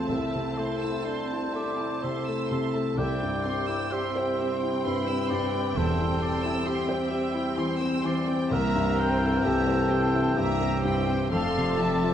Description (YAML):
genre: classical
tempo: 64 BPM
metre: 3/4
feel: rubato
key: unclear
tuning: A4 = 441 Hz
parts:
  - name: clear concert grand piano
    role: melody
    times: 0.0-12.1 s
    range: C2 to C5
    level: -29 LUFS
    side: left 2 dB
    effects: none
  - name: rich studio violin section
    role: melody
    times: 0.0-12.1 s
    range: G5 to C6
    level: -38 LUFS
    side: left 2 dB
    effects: none
  - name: hollow concert flute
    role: second line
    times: 0.0-12.1 s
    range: D5 to D6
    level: -35 LUFS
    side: left 1 dB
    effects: none
  - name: mellow clarinet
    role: second line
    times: 0.0-12.1 s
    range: D4 to D5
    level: -33 LUFS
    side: right 1 dB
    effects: none
  - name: rich studio violin section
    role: second line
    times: 0.0-12.1 s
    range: C5 to E6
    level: -37 LUFS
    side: equal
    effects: none
  - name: warm oboe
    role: second line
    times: 0.0-12.1 s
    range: C5 to G5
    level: -36 LUFS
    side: right 2 dB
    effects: none
  - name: rich studio viola section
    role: accompaniment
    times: 0.0-12.1 s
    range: A3 to C4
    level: -34 LUFS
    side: right 2 dB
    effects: none
  - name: warm French horn section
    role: sustained chords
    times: 0.0-12.1 s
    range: E3 to E4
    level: -34 LUFS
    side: left 3 dB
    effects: none
  - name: clear studio cello section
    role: bass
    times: 0.1-12.1 s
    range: C2 to C3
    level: -32 LUFS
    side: right 1 dB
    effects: none
  - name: rich studio double bass section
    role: bass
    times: 0.1-12.1 s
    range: E1 to C2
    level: -34 LUFS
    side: right 3 dB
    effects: none
  - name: timpani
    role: percussion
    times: 5.8-7.1 s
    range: E2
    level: -36 LUFS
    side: equal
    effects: none
room: wet scoring stage reverb, RT60 1.7 s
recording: nothing above 10.3 kHz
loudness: -24 LUFS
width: side -9 dB against mid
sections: 0.0-12.1 A section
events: none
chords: 0.1 Am/C; 3.0 C; 5.8 C/E; 8.5 C7; 11.3 Fmaj7